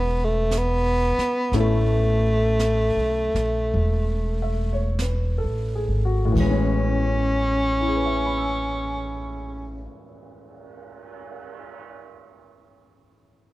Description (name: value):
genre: jazz ballad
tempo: 42-62 BPM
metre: 4/4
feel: swing 66% on 8ths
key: A major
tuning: A4 = 440 Hz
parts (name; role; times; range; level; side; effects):
- clear tenor saxophone; melody; 0.0-9.9 s; A3 to C#4; -24 LUFS; equal; none
- warm grand piano; accompaniment; 0.0-13.5 s; A2 to E6; -28 LUFS; left 2 dB; none
- upright bass; bass; 0.0-9.9 s; E1 to B1; -24 LUFS; equal; none
- jazz brush drum kit; drums; 0.5-11.8 s; brushed snare drum, crash cymbal, cymbal swell, hi-hat, kick drum, snare drum; -36 LUFS; right 3 dB; none
room: little or no reverb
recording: dark, warm production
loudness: -20 LUFS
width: side -17 dB against mid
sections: 0.0-6.4 A section; 6.4-12.1 B section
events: slowing down 0.0-6.4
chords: 0.0 Amaj9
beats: 0.52 | 1.53 2.60 3.74 4.99 | 6.36 7.78 9.20 10.63